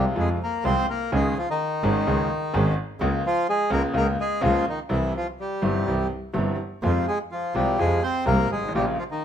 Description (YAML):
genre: tango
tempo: 126 BPM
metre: 4/4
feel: rubato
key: F minor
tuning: A4 = 438 Hz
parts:
  - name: bandoneon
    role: melody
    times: 0.0-9.2 s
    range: Eb3 to C5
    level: -25 LUFS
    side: left 1 dB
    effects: none
  - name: warm concert grand piano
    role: accompaniment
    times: 0.0-8.9 s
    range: G1 to Ab4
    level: -26 LUFS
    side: left 1 dB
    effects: none
  - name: clear double bass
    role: bass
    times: 0.0-8.9 s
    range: G1 to F2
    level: -26 LUFS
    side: right 1 dB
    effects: none
room: moderate large studio reverb, RT60 1.2 s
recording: minimal, uncompressed stereo recording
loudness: -21 LUFS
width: side -9 dB against mid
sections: 0.0-9.2 A section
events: none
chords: 0.0 Fm; 1.1 Dbsus2; 3.0 Bbm7/Db; 4.9 C; 6.8 Fm; 8.7 Bbm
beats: 0.16 0.64 | 1.12 1.59 2.06 2.53 | 3.00 3.48 3.95 4.43 | 4.91 5.38 5.86 6.34 | 6.83 7.30 7.78 8.26 | 8.73 9.21